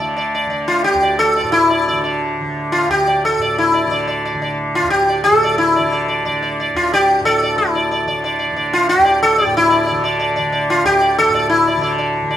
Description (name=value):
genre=indian classical, Hindustani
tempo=174-188 BPM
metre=3/4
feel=straight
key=unclear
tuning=A4 = 438 Hz
part: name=sitar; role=melody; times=0.0-12.4 s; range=E4 to D5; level=-14 LUFS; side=equal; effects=none
part: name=tanpura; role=drone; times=0.0-12.4 s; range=D2 to D3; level=-22 LUFS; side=equal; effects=none
room=moderate recital hall reverb, RT60 1.7 s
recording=minimal, uncompressed stereo recording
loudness=-13 LUFS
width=side -11 dB against mid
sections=0.0-7.6 A section; 7.6-12.4 B section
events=speeding up 0.0-12.4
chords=none